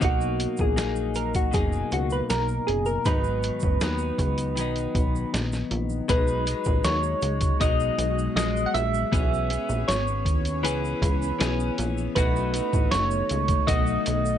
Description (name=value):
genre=indie pop, bedroom pop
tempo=79 BPM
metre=4/4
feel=straight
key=unclear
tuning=A4 = 440 Hz
part: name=soft electric-piano-like synth keys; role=melody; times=0.0-14.4 s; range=F#4 to F#5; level=-27 LUFS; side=right 2 dB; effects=lush chorus, slapback echo
part: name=direct-recorded clean electric guitar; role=accompaniment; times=0.0-14.4 s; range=G#2 to G#4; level=-30 LUFS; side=left 6 dB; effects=wide subtle chorus, vibrato effect
part: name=plucky analog bass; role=bass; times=0.0-14.4 s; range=F#1 to D#2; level=-28 LUFS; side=equal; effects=none
part: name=lo-fi sampler-style drum kit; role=drums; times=0.0-14.2 s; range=hi-hat, kick drum, snare drum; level=-26 LUFS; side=equal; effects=none
part: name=egg shaker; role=percussion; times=0.0-14.4 s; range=none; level=-43 LUFS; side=right 6 dB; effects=none
part: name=ethereal airy pad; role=sustained chords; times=7.2-14.4 s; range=D#3 to F#4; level=-35 LUFS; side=left 1 dB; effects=ensemble chorus, built-in reverb, tremolo
room=light reverb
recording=nothing above 10.6 kHz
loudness=-22 LUFS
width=side -10 dB against mid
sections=0.0-6.1 A section; 6.1-14.4 B section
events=none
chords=0.0 Bmaj7; 3.1 G#m7; 9.1 C#m7; 12.2 B7